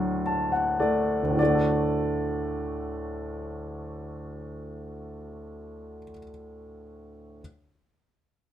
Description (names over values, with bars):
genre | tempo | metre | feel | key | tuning
classical, lyrical solo piano | 33-39 BPM (dotted quarters) | 6/8 | rubato | D major | A4 = 440 Hz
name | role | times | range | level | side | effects
clear baby grand piano | solo | 0.0-7.4 s | D2 to A5 | -27 LUFS | equal | none
room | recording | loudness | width
moderate studio reverb, RT60 0.6 s | minimal, uncompressed stereo recording | -24 LUFS | side -10 dB against mid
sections
0.0-1.4 A section; 1.4-4.9 B section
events
grand piano fill 0.0-1.4; slowing down 0.0-1.4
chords
0.0 D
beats
| 1.40 3.17